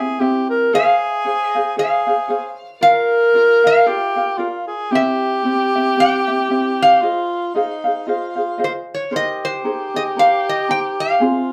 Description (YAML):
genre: Hawaiian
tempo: 114 BPM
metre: 4/4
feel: swing 57% on 8ths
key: F minor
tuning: A4 = 440 Hz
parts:
  - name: mellow tenor saxophone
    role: second line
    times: 0.0-11.5 s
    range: Eb4 to Bb4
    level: -21 LUFS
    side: equal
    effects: none
  - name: ukulele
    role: accompaniment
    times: 0.0-11.5 s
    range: C4 to F5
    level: -24 LUFS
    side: equal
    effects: none
  - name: metal-body resonator slide guitar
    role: melody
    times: 0.8-11.5 s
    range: C5 to G5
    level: -19 LUFS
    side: equal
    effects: none
room: wet small room reverb, RT60 0.5 s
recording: band playing live in one room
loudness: -17 LUFS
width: mono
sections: 0.0-9.1 A section; 9.1-11.5 B section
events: none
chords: 0.0 C; 0.7 Dbmaj7; 2.8 Bb; 4.9 C; 7.0 Fm7; 9.1 Abadd9